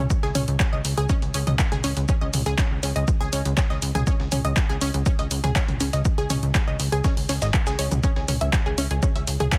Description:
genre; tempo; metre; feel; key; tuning
melodic techno; 121 BPM; 4/4; straight; unclear; A4 = 440 Hz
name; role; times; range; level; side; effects
unison pluck; arpeggios; 0.0-9.6 s; C#4 to E6; -31 LUFS; equal; sidechain pumping, dub echo
plucky analog bass; bass; 0.0-9.5 s; G#1 to C#2; -28 LUFS; equal; sidechain pumping
dusty soul sampler-style drum kit; drums; 0.1-9.6 s; hi-hat, shaker, snare drum; -39 LUFS; equal; high-pass filter on perc, small room ambience, high-pass filter on snare, high-pass filter on hats
electronic kick drum; drums; 0.1-9.6 s; none; -24 LUFS; equal; overdrive, small room ambience
punchy analog drum machine; drums; 0.1-9.6 s; handclaps, hi-hat, toms; -30 LUFS; equal; overdrive, sidechain pumping on hats, small room ambience, sidechain pumping on toms
room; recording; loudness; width
little or no reverb; dense, heavily limited modern master; -23 LUFS; mono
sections
0.0-9.6 A section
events
none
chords
0.1 G#5/C#; 8.0 C#m

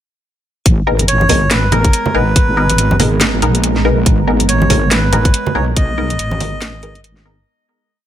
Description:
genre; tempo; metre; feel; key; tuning
deep dubstep; 141 BPM; 4/4; swing 58% on 16ths, half-time; G# minor; A4 = 440 Hz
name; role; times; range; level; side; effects
deep dark ambient pad; sustained chords; 1.7-7.4 s; G#3 to A#5; -22 LUFS; right 3 dB; chorus, built-in reverb
wobble bass; bass; 0.7-7.5 s; G#1 to B1; -16 LUFS; equal; chorus
electronic kick drum; drums; 0.7-5.9 s; none; -13 LUFS; equal; none
garage drum kit; drums; 0.7-7.2 s; hi-hat, snare drum; -17 LUFS; equal; none
filtered dub chord stab; stabs; 0.9-7.4 s; B3 to A#4; -20 LUFS; left 3 dB; phaser, vintage 12-bit sampler grit, dub echo
congas; percussion; 1.0-6.9 s; none; -21 LUFS; right 2 dB; none
melodica; melody; 1.1-7.0 s; A#4 to D#5; -19 LUFS; right 1 dB; dub echo
room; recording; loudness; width
light reverb; none; -11 LUFS; side -11 dB against mid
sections
0.7-7.5 drop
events
drop 0.7-7.5; fade-out 5.2-7.5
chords
0.7 G#madd9

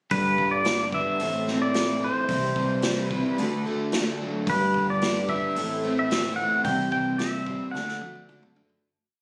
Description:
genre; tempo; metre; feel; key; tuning
folk rock and heartland rock; 110 BPM; 4/4; straight; G major; A4 = 437 Hz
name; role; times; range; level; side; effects
pedal steel guitar; melody; 0.1-8.5 s; B4 to G5; -29 LUFS; equal; none
picked twelve-string acoustic guitar; accompaniment; 0.1-8.8 s; A2 to D5; -32 LUFS; equal; none
crunchy overdriven guitar; riff; 0.1-8.8 s; G2 to E4; -35 LUFS; equal; none
picked electric bass; bass; 0.1-8.6 s; G1 to D2; -36 LUFS; equal; none
vintage drum kit; drums; 0.1-8.8 s; hi-hat, kick drum, snare drum, toms; -33 LUFS; equal; none
room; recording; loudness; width
light reverb; recorded on a phone in the room, studio reverb; -25 LUFS; mono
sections
0.1-8.8 verse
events
fade-out 6.6-8.8; drum fill 7.7-8.8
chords
0.1 G; 1.2 Am; 2.3 C; 3.4 D; 4.5 G; 5.6 Am; 6.6 C; 7.7 D

